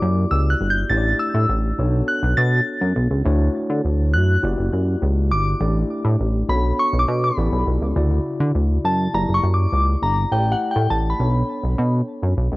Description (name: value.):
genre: early-eighties boogie funk.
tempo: 102 BPM.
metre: 4/4.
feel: straight.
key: B minor.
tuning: A4 = 440 Hz.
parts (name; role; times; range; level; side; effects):
glassy synth bell; melody; 0.0-11.9 s; F#5 to A6; -23 LUFS; left 1 dB; chorus, tremolo, cassette tape.
mellow tine electric piano; accompaniment; 0.0-12.6 s; C#3 to D5; -26 LUFS; left 1 dB; medium stereo tremolo.
chorused synth bass; bass; 0.0-12.6 s; F#1 to D3; -18 LUFS; equal; none.
room: light reverb.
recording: home recording on cassette.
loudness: -17 LUFS.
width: side -20 dB against mid.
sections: 0.0-8.0 A section; 8.0-12.6 B section.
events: synth bell solo 8.0-12.6.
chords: 0.0 F#7b9b13; 0.9 A7sus4; 1.8 Bm9; 3.3 Dmaj9; 4.4 F#7b9b13; 5.6 A7sus4; 6.5 Bm9; 7.4 A9sus4; 8.0 Dmaj9; 9.1 F#7b9b13; 10.3 A7sus4; 11.2 Bm9.